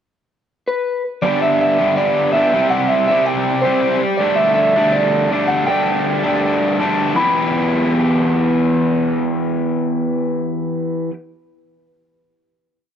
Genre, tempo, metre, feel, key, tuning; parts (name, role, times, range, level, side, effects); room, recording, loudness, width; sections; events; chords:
rock; 162 BPM; 4/4; straight; E minor; A4 = 440 Hz
electric guitar through a small old amp; melody; 0.7-11.1 s; B4 to B5; -17 LUFS; right 1 dB
raw garage guitar; riff; 1.2-11.1 s; G2 to G4; -16 LUFS; equal; overdrive
light reverb; dark, warm production; -14 LUFS; side -8 dB against mid
0.0-1.2 pickup bar; 1.2-7.2 pre-chorus; 7.2-10.1 final chord
0.0 N.C.; 1.2 G; 2.5 C; 4.2 Dsus4; 7.2 Em